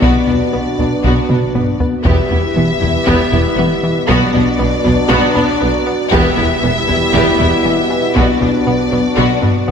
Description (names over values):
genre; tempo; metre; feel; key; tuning
cinematic, hybrid orchestral and electronic film score; 118 BPM; 4/4; straight; E minor; A4 = 441 Hz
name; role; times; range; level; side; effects
warm symphonic violin section; melody; 0.0-9.7 s; D5 to E5; -20 LUFS; left 4 dB; none
rich symphonic violin section; second line; 0.0-9.7 s; B3 to G4; -22 LUFS; left 3 dB; none
rich symphonic viola section; accompaniment; 0.0-9.7 s; B3; -21 LUFS; right 1 dB; none
dark trombone section; sustained chords; 0.0-9.7 s; B2 to G3; -23 LUFS; right 4 dB; none
hollow soft pad; sustained chords; 0.0-9.7 s; B3 to B4; -21 LUFS; equal; chorus
mellow French horn section; sustained chords; 0.0-9.7 s; B3 to E4; -22 LUFS; left 4 dB; none
plucky analog bass; riff; 0.0-9.7 s; E2 to B3; -19 LUFS; left 2 dB; none
dark symphonic cello section; bass; 0.0-9.7 s; E2 to B2; -22 LUFS; right 3 dB; none
rich symphonic double bass section; bass; 0.0-9.7 s; E1 to B1; -21 LUFS; right 4 dB; none
taiko ensemble; drums; 0.0-9.7 s; none; -20 LUFS; equal; none
room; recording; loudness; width
wet concert hall reverb, RT60 2.5 s; none; -11 LUFS; side -7 dB against mid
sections
0.0-9.7 A section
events
drum fill 1.3-2.1, 9.4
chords
0.0 Bm; 2.1 Em; 4.1 Bm; 6.1 Em; 8.2 Bm